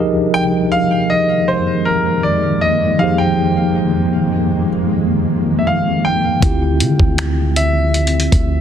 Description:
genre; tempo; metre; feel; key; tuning
contemporary R&B; 79 BPM; 4/4; straight; unclear; A4 = 440 Hz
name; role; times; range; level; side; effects
mellow tine electric piano; accompaniment; 0.0-8.6 s; D3 to Eb5; -18 LUFS; equal; medium stereo tremolo
granular cloud pad; sustained chords; 0.0-8.6 s; F2 to E5; -19 LUFS; equal; built-in reverb, sidechain pumping
clear concert grand piano; melody; 0.3-8.6 s; Bb4 to G5; -19 LUFS; equal; digital delay
warm 808-style bass; bass; 6.4-8.6 s; D2 to D3; -16 LUFS; equal; none
dusty soul sampler-style drum kit; drums; 6.4-8.5 s; finger snaps, hi-hat, kick drum; -16 LUFS; equal; soft clipping on snare
room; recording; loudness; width
light reverb; dense, heavily limited modern master; -13 LUFS; side -9 dB against mid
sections
0.0-8.6 A section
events
tine electric piano fill 0.0-0.3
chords
0.0 Fm11; 6.4 Dm11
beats
| 0.35 1.11 1.87 2.63 | 3.39 4.15 4.91 5.67 | 6.43 7.18 7.95

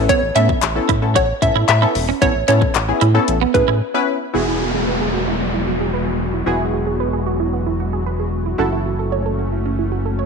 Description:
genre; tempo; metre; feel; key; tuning
dance-pop; 113 BPM; 4/4; straight; E major; A4 = 440 Hz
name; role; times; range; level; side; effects
punchy chord stab; accompaniment; 0.0-10.3 s; B3 to B4; -22 LUFS; left 2 dB; chorus, sidechain pumping
clean electric guitar; riff; 0.0-3.8 s; B3 to F#4; -22 LUFS; right 13 dB; ensemble chorus
round analog bass; bass; 0.0-10.3 s; E1 to A2; -21 LUFS; equal; sidechain pumping
hollow square pluck; melody; 0.1-3.6 s; B4 to E5; -19 LUFS; right 1 dB; chorus, slapback echo
house drum kit; drums; 0.1-3.7 s; handclaps, hi-hat, kick drum; -20 LUFS; left 5 dB; none
group handclap; percussion; 0.4-2.9 s; none; -29 LUFS; left 14 dB; none
airy breathy pad; sustained chords; 4.3-10.3 s; E3 to F#4; -25 LUFS; left 2 dB; chorus, sidechain pumping
wide unison pluck; arpeggios; 4.3-10.3 s; B3 to C#5; -25 LUFS; right 8 dB; sidechain pumping, slapback echo
downlifter; sound effects; 4.3-8.6 s; none; -24 LUFS; equal; none
room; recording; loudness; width
moderate echo chamber reverb, RT60 1.8 s; 1960s-style stereo with parts hard left and right; -15 LUFS; side -5 dB against mid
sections
0.0-4.3 A section; 4.3-10.3 B section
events
drop 0.0-4.3; break 3.8-4.3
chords
0.0 Aadd9; 4.3 Eadd9; 8.6 F#m7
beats
| 0.09 0.62 1.16 1.69 | 2.22 2.75 3.28 3.81 | 4.34 4.87 5.40 5.93 | 6.47 7.00 7.53 8.06 | 8.59 9.12 9.65 10.18

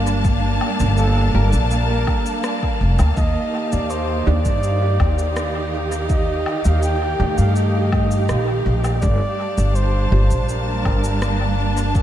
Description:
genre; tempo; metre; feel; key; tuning
ambient dub; 82 BPM; 4/4; straight; G minor; A4 = 440 Hz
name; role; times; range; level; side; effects
warm symphonic string section; sustained chords; 0.0-12.0 s; Eb3 to A5; -23 LUFS; right 1 dB; none
upright bass; bass; 0.0-12.0 s; F1 to G2; -18 LUFS; equal; none
electronic shaker, woodblock and rim click; drums; 0.1-12.0 s; none; -32 LUFS; left 1 dB; dub echo
electronic kick drum; drums; 0.2-12.0 s; none; -21 LUFS; equal; none
trumpet with bucket mute; melody; 1.0-11.5 s; A4 to G5; -27 LUFS; right 1 dB; dub echo
pedal steel guitar; arpeggios; 1.3-8.7 s; A3 to D6; -33 LUFS; left 4 dB; none
filtered dub chord stab; stabs; 1.3-10.4 s; Bb3 to G4; -33 LUFS; right 4 dB; none
room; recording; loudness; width
moderate lush hall reverb, RT60 2.8 s; dreamy mix soaked in reverb; -16 LUFS; side -11 dB against mid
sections
0.0-12.0 A section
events
none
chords
0.0 Gm7; 3.2 Ebmaj7; 9.0 Gm7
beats
| 0.24 0.98 1.71 2.44 | 3.17 3.90 4.64 5.37 | 6.10 6.83 7.56 8.29 | 9.03 9.76 10.49 11.22 | 11.95

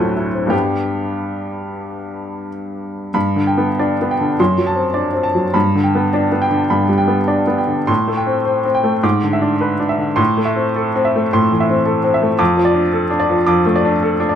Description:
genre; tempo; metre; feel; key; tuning
classical, romantic character piece for solo piano; 88-114 BPM; 4/4; rubato; G major; A4 = 441 Hz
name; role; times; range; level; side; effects
clear upright piano; solo; 0.0-14.4 s; D2 to D6; -14 LUFS; equal; none
room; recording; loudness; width
moderate large studio reverb, RT60 1.0 s; close, detailed microphones; -14 LUFS; side -9 dB against mid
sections
0.0-3.1 A section; 3.1-14.4 B section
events
none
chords
0.0 D13; 0.5 G; 4.4 D7/F#; 5.5 G; 7.9 Am7; 9.0 E7/G#; 10.2 Am; 12.4 Dm/F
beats
| 0.52 1.19 1.84 2.48 | 3.15 3.79 4.38 4.95 | 5.54 6.14 6.71 7.29 | 7.89 8.48 9.04 9.61 | 10.19 10.77 11.33 11.87 | 12.40 12.94 13.48 14.02

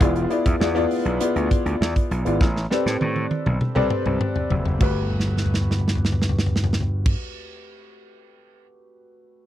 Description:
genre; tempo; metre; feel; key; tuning
polished 1980s jazz-funk pop; 100 BPM; 4/4; straight; G major; A4 = 439 Hz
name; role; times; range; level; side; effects
warm concert grand piano; accompaniment; 0.0-9.5 s; A3 to D5; -25 LUFS; left 2 dB; wide subtle chorus
gritty slap bass; bass; 0.0-7.1 s; E1 to A2; -24 LUFS; equal; overdrive
modern studio drum kit; drums; 0.0-8.7 s; crash cymbal, hi-hat, kick drum, snare drum, toms; -22 LUFS; equal; none
room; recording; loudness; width
little or no reverb; dry, close 1970s-style studio recording; -19 LUFS; side -12 dB against mid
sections
0.0-4.8 A section; 4.8-7.2 B section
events
drum fill 2.4-4.8, 5.1-7.1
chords
0.0 E7b9; 2.4 Am11; 4.8 Gmaj9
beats
| 0.01 0.61 1.21 1.81 | 2.41 3.01 3.61 4.21 | 4.81 5.41 6.01 6.61

